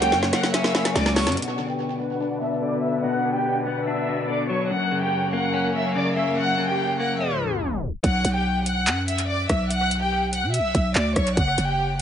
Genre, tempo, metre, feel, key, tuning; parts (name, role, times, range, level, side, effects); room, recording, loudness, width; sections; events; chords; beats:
hip hop, drill; 144 BPM; 4/4; half-time; B harmonic minor; A4 = 440 Hz
rich studio violin section; melody; 0.0-12.0 s; G4 to F#6; -25 LUFS; equal; low-pass filter, tape echo
dark detuned synth bell; second line; 0.0-1.4 s; C#6; -33 LUFS; right 2 dB; chorus, tape echo
clean electric guitar; accompaniment; 0.0-8.0 s; F#2 to D4; -26 LUFS; left 3 dB; wide subtle chorus, low-pass filter, tape echo
rich studio string section; sustained chords; 0.0-8.0 s; F#2 to C#5; -30 LUFS; right 2 dB; low-pass filter
growling 808-style bass; bass; 0.0-1.4, 8.0-12.0 s; F#1 to B2; -24 LUFS; right 1 dB
drill drum kit; drums; 0.0-1.5, 8.0-12.0 s; handclaps, hi-hat, kick drum, rim click, snare drum; -25 LUFS; equal; tape echo
light reverb, digital ambience; echo-heavy mix, tape stop, nothing above 10.4 kHz; -21 LUFS; side -9 dB against mid
0.0-1.4 A section; 1.4-8.0 B section; 8.0-12.0 C section
drum fill 0.0-1.4; filter sweep 1.4-8.0; tape stop 7.2-8.0
0.0 F#; 1.4 Bm; 4.7 F#; 8.0 B5; 11.4 F#5
0.12 0.54 0.95 | 1.37 1.79 2.21 2.62 | 3.04 3.46 3.87 4.29 | 4.71 5.12 5.54 5.96 | 6.37 6.79 7.21 7.62 | 8.04 8.46 8.87 9.29 | 9.71 10.12 10.54 10.96 | 11.37 11.79